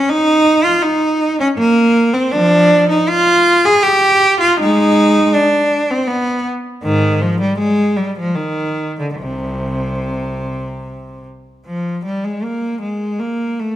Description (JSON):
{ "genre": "classical, baroque-style suite movement for unaccompanied cello", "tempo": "72-81 BPM", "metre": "3/4", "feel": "rubato", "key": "C minor", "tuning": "A4 = 440 Hz", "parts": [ { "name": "clear cello", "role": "solo", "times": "0.0-13.8 s", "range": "C2 to Ab4", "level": "-13 LUFS", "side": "equal", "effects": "none" } ], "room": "moderate recital hall reverb, RT60 1.5 s", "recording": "dark, warm production", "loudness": "-12 LUFS", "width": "side -12 dB against mid", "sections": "0.0-11.7 A section; 11.7-13.8 A section", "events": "none", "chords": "none" }